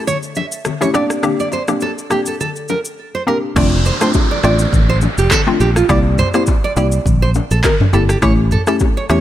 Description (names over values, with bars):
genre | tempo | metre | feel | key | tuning
afrobeats | 103 BPM | 4/4 | swing 55% on 16ths | F major | A4 = 440 Hz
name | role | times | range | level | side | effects
nylon-string guitar | riff | 0.1-9.2 s | F4 to E5 | -20 LUFS | right 4 dB | tape echo
afro-pop drum kit | drums | 0.1-9.2 s | crash cymbal, handclaps, kick drum, rim click, shaker, toms | -18 LUFS | equal | none
congas and bongos | percussion | 0.1-9.0 s | none | -25 LUFS | left 8 dB | none
hollow square pluck | accompaniment | 0.8-9.2 s | A3 to G4 | -18 LUFS | left 2 dB | chorus
fingered electric bass | bass | 3.6-9.2 s | F1 to E2 | -15 LUFS | equal | none
downlifter | sound effects | 3.6-8.2 s | none | -24 LUFS | right 1 dB | none
room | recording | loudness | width
little or no reverb | none | -13 LUFS | side -12 dB against mid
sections
0.0-3.6 A section; 3.6-9.2 B section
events
none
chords
0.0 A7; 0.9 Bb69; 3.6 F6; 5.9 C7; 8.2 A7